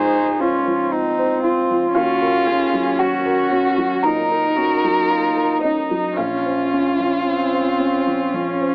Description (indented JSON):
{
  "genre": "neoclassical piano and strings",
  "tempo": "57 BPM",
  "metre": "4/4",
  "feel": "rubato",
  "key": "unclear",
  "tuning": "A4 = 439 Hz",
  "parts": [
    { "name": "muted violin", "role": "melody", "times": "0.0-8.7 s", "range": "Eb4 to C5", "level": "-20 LUFS", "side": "equal", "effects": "none" },
    { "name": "muted cello", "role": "second line", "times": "0.0-8.7 s", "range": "Db4 to Ab4", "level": "-22 LUFS", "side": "equal", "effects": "none" },
    { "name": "felt-muted upright piano", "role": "accompaniment", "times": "0.0-8.7 s", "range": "Bb1 to Db6", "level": "-23 LUFS", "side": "equal", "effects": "none" },
    { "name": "muted viola", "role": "accompaniment", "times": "0.0-8.7 s", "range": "C4 to Eb4", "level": "-22 LUFS", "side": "equal", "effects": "none" }
  ],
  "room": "light reverb",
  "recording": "worn, warbling old tape, cassette tape, warbly pitch drift, AM radio sound",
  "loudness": "-16 LUFS",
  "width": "side -37 dB against mid",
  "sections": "0.0-8.7 A section",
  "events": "none",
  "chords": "0.0 Dbmaj7; 1.9 Ebm7; 6.2 Bbmadd9"
}